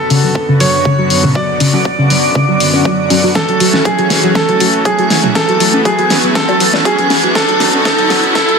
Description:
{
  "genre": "progressive house",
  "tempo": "120 BPM",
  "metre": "4/4",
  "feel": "straight",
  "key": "F# minor",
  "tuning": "A4 = 441 Hz",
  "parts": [
    { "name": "bright baby grand piano", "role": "melody", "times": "0.0-8.6 s", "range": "G#4 to D5", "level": "-16 LUFS", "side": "right 1 dB", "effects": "sidechain pumping, dub echo" },
    { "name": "airy dreamy lead", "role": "second line", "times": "0.0-8.6 s", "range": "G#4 to D5", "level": "-18 LUFS", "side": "equal", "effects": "chorus, phaser, sidechain pumping, dub echo" },
    { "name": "supersaw pad", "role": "sustained chords", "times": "0.0-8.6 s", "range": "F#2 to F#4", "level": "-18 LUFS", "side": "right 1 dB", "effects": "sidechain pumping" },
    { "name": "soft round pluck", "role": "arpeggios", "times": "0.1-8.6 s", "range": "C#3 to C#4", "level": "-16 LUFS", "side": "equal", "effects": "ensemble chorus, vintage 12-bit sampler grit, sidechain pumping, dub echo" },
    { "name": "big-room dance drum kit", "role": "drums", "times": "0.1-8.6 s", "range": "hi-hat, snare drum", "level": "-16 LUFS", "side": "left 1 dB", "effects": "studio ambience" },
    { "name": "electronic kick drum", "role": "drums", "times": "0.4-8.5 s", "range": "none", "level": "-21 LUFS", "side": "equal", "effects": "high-pass filter on kick, studio ambience" },
    { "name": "electronic toms, congas and bongos", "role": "percussion", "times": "1.2-7.8 s", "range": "none", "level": "-20 LUFS", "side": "left 2 dB", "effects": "sidechain pumping on perc, studio ambience, sidechain pumping on toms" },
    { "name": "riser", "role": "sound effects", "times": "5.0-8.6 s", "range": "none", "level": "-19 LUFS", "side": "equal", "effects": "none" }
  ],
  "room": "moderate lush hall reverb, RT60 1.8 s",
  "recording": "dense, heavily limited modern master, high-pass filter",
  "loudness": "-9 LUFS",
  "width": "side -5 dB against mid",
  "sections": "0.0-8.6 A section",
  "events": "build-up 0.0-8.6; drum fill 3.4-8.6; riser 5.0-8.6",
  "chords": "0.0 Bmadd9/F#; 3.4 F#m7; 7.4 Bmadd9/F#",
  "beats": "0.35 0.85 | 1.35 1.85 2.35 2.85 | 3.35 3.85 4.35 4.85 | 5.35 5.85 6.35 6.85 | 7.35 7.85 8.35"
}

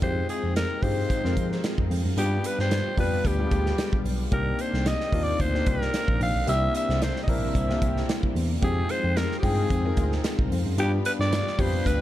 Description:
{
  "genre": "polished 1980s jazz-funk pop",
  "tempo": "112 BPM",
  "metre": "4/4",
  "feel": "swing 54% on 16ths",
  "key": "C minor",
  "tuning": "A4 = 440 Hz",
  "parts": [
    { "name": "breathy alto saxophone", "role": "melody", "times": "0.0-12.0 s", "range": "G4 to F5", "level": "-29 LUFS", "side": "equal", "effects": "none" },
    { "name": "clear grand piano", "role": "accompaniment", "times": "0.0-12.0 s", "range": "G3 to G5", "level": "-30 LUFS", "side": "left 4 dB", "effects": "analog chorus" },
    { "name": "phased string machine", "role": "sustained chords", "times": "0.0-12.0 s", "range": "C3 to D5", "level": "-37 LUFS", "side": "equal", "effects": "ensemble chorus, phaser" },
    { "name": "tine electric piano", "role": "bass", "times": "0.0-12.0 s", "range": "Bb1 to F3", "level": "-27 LUFS", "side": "equal", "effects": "none" },
    { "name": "modern studio drum kit", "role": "drums", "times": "0.0-12.0 s", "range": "hi-hat, kick drum, snare drum", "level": "-28 LUFS", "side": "right 1 dB", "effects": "none" }
  ],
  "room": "little or no reverb",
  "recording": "dark, warm production",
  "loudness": "-22 LUFS",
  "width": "side -13 dB against mid",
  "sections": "0.0-12.0 A section",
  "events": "none",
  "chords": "0.0 Fm7; 2.2 G7; 4.3 Cm9; 6.5 C7; 8.6 Fm7; 10.8 G7",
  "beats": "| 0.02 0.56 1.09 1.63 | 2.17 2.71 3.25 3.78 | 4.32 4.86 5.40 5.94 | 6.47 7.01 7.55 8.09 | 8.63 9.17 9.71 10.24 | 10.78 11.32 11.86"
}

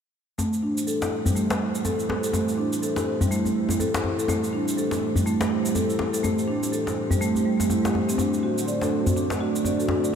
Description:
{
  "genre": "afro house",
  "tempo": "123 BPM",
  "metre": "4/4",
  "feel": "swing 59% on 16ths",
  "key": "A dorian",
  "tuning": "A4 = 440 Hz",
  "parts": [
    { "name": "dark analog pad", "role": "sustained chords", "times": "0.4-10.2 s", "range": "A3 to C5", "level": "-27 LUFS", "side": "right 2 dB", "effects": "chorus" },
    { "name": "marimba with soft mallets", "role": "arpeggios", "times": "0.4-10.1 s", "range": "G3 to D5", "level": "-25 LUFS", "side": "equal", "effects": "low-pass filter, diffuse ambient delay" },
    { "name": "cabasa", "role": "drums", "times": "0.4-10.1 s", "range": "none", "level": "-35 LUFS", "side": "right 3 dB", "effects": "overdrive" },
    { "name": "djembe", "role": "percussion", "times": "0.4-10.0 s", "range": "none", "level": "-28 LUFS", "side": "left 2 dB", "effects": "none" }
  ],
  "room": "wet huge ambient reverb, RT60 4.8 s",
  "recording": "dreamy mix soaked in reverb",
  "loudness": "-22 LUFS",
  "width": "side -7 dB against mid",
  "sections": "0.4-10.2 A section",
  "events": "filter sweep on marimba 0.4-10.2",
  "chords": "0.4 Am7; 8.2 D7",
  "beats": "| 0.38 0.87 1.36 1.85 | 2.33 2.82 3.31 3.80 | 4.29 4.77 5.26 5.75 | 6.24 6.72 7.21 7.70 | 8.19 8.68 9.16 9.65 | 10.14"
}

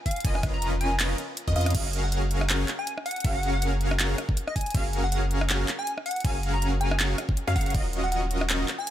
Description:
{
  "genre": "future bass",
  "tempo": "160 BPM",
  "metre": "4/4",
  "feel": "swing 56% on 16ths, half-time",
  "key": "F# major",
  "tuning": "A4 = 440 Hz",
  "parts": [
    { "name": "plucky unison lead", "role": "melody", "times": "0.1-8.9 s", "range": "D#5 to A#5", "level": "-33 LUFS", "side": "equal", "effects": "sidechain pumping, dub echo" },
    { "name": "electronic kick drum", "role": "drums", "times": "0.1-7.8 s", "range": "none", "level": "-27 LUFS", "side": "equal", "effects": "overdrive" },
    { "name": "trap drum kit", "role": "drums", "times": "0.1-8.9 s", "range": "crash cymbal, handclaps, hi-hat, rim click", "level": "-30 LUFS", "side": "equal", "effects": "overdrive" },
    { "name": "wide unison pluck", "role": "arpeggios", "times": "0.2-8.7 s", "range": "D#5 to E#5", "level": "-36 LUFS", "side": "equal", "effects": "sidechain pumping, dub echo" },
    { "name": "dense compressed supersaw", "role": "riff", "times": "0.2-8.7 s", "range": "C#4 to E#5", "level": "-31 LUFS", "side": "equal", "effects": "sidechain pumping" },
    { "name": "saturated sub bass", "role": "bass", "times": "0.2-8.6 s", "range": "D#1 to F#2", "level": "-27 LUFS", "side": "equal", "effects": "sidechain pumping" }
  ],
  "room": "light reverb",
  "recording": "none",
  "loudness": "-24 LUFS",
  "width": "side -12 dB against mid",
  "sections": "0.0-1.7 A section; 1.7-8.9 A section",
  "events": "drop 0.0-1.7, 1.7-8.9; drum fill 1.6; band accent 1.7",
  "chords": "0.0 C#13/E#; 1.7 F#maj9; 7.7 D#m9",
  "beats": "| 0.24 0.62 0.99 1.37 | 1.75 2.12 2.50 2.87 | 3.25 3.62 4.00 4.37 | 4.75 5.12 5.50 5.87 | 6.25 6.62 7.00 7.37 | 7.75 8.12 8.49 8.87"
}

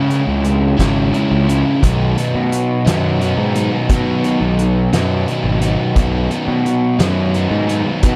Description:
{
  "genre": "indie rock",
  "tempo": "58 BPM (dotted quarters)",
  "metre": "6/8",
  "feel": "straight",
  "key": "unclear",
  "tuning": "A4 = 440 Hz",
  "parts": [
    { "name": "crunchy overdriven guitar", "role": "riff", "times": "0.0-8.2 s", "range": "B2 to E4", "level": "-19 LUFS", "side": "equal", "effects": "none" },
    { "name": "fuzz picked electric bass", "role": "bass", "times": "0.0-8.2 s", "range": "G#1 to C#3", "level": "-20 LUFS", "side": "equal", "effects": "overdrive" },
    { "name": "loose indie drum kit", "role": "drums", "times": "0.1-8.2 s", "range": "hi-hat, kick drum, snare drum", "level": "-21 LUFS", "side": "equal", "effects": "none" }
  ],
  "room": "little or no reverb",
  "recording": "none",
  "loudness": "-16 LUFS",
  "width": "mono",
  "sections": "0.0-8.2 A section",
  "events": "none",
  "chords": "0.0 C#m; 1.8 B",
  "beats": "0.80 | 1.83 2.87 | 3.90 4.93 | 5.97 7.00 | 8.03"
}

